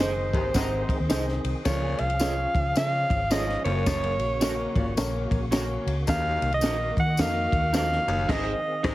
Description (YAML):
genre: uptempo 1960s-style soul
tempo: 108 BPM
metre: 4/4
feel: swing 61% on 8ths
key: Db major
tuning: A4 = 440 Hz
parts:
  - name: warm alto saxophone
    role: melody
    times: 0.0-8.9 s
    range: C5 to Gb5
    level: -28 LUFS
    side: right 1 dB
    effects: tape echo
  - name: warm upright piano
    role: accompaniment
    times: 0.0-8.9 s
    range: Ab2 to Gb5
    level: -33 LUFS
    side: left 3 dB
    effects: none
  - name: percussive tonewheel organ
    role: sustained chords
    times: 0.0-8.9 s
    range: Db3 to Ab4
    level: -37 LUFS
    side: equal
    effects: slow rotary speaker, overdrive, chorus vibrato
  - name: electric guitar through a small old amp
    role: stabs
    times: 0.0-8.9 s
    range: Db4 to Db5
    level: -34 LUFS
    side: right 5 dB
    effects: none
  - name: vintage muted fingered electric bass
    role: bass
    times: 0.0-8.9 s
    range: Gb1 to Eb3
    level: -29 LUFS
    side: equal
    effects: none
  - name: compact cocktail drum kit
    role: drums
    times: 0.0-8.9 s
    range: crash cymbal, kick drum, ride cymbal, snare drum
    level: -28 LUFS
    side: equal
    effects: none
  - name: clear horn section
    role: second line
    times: 0.3-1.0, 8.3-8.9 s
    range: C3 to Eb4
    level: -37 LUFS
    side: equal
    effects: none
  - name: raspy baritone saxophone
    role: riff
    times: 0.3-8.9 s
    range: Eb2 to Bb2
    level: -33 LUFS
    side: left 4 dB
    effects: none
  - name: tambourine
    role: percussion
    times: 0.5-7.9 s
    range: none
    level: -37 LUFS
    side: left 5 dB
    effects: none
room: little or no reverb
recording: heavily compressed radio sound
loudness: -23 LUFS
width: side -16 dB against mid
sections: 0.0-8.9 A section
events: band accent 0.0-1.7, 8.3-8.9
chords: 0.0 Ab; 1.7 Db; 3.6 Gb; 6.1 Ebm; 8.3 Ab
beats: 0.00 0.55 1.10 | 1.65 2.21 2.76 3.31 | 3.87 4.42 4.97 5.52 | 6.08 6.63 7.18 7.74 | 8.29 8.84